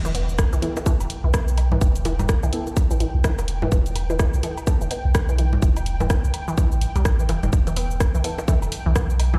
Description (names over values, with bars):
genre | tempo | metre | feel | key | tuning
minimal techno | 126 BPM | 4/4 | swing 60% on 16ths | E minor | A4 = 440 Hz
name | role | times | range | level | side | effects
resonant blip pluck | riff | 0.0-9.4 s | E3 to B3 | -32 LUFS | equal | phaser, sidechain pumping, dub echo
punchy sub bass | bass | 0.0-9.4 s | E1 to B1 | -24 LUFS | equal | sidechain pumping
impact | sound effects | 0.0-1.8 s | none | -38 LUFS | equal | none
pulsing gated texture | texture | 0.0-9.4 s | G5 | -41 LUFS | equal | chorus, built-in reverb, sidechain pumping
garage drum kit | drums | 0.1-9.3 s | cabasa, hi-hat, rim click | -33 LUFS | equal | none
bongos, cowbell, woodblock and congas | percussion | 0.1-9.4 s | none | -33 LUFS | equal | overdrive, dub echo
electronic kick drum | drums | 0.4-9.1 s | none | -21 LUFS | equal | none
filtered dub chord stab | stabs | 0.6-4.8, 8.2-8.6 s | B3 to A4 | -37 LUFS | equal | phaser, analog chorus, vintage 12-bit sampler grit, dub echo
room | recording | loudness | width
digital ambience | played on a big sound system in a bare room, large studio reverb | -21 LUFS | mono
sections
0.0-9.4 A section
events
impact 0.0-1.8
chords
0.0 E5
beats
0.39 0.86 1.34 | 1.81 2.29 2.77 3.24 | 3.72 4.20 4.67 5.15 | 5.62 6.10 6.58 7.05 | 7.53 8.01 8.48 8.96